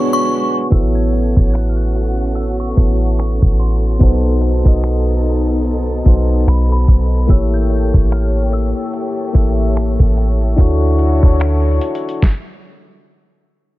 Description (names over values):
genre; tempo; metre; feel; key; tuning
contemporary R&B; 73 BPM; 4/4; swing 58% on 16ths; A major; A4 = 440 Hz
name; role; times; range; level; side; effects
synth chime; melody; 0.0-13.0 s; B5 to G#6; -25 LUFS; left 1 dB; ensemble chorus, phaser, tremolo, tape echo
soft electric-piano-like synth keys; accompaniment; 0.0-12.2 s; Bb3 to E5; -19 LUFS; left 1 dB; chorus
warm studio string section; sustained chords; 0.0-12.2 s; D3 to C#5; -27 LUFS; left 1 dB; none
soft 808-style bass; bass; 0.7-11.8 s; A1 to D2; -15 LUFS; equal; none
dusty soul sampler-style drum kit; drums; 0.7-12.5 s; finger snaps, hi-hat, kick drum, snare drum; -12 LUFS; equal; soft clipping on snare
room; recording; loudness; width
little or no reverb; dense, heavily limited modern master, low-pass filter; -12 LUFS; side -17 dB against mid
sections
0.7-13.8 A section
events
break 0.0-0.7; filter sweep 0.7-13.8; stop 12.2-13.8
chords
0.0 E13; 0.7 A6; 4.0 B7b9; 7.3 A7b9; 10.6 Dmaj9; 13.0 N.C.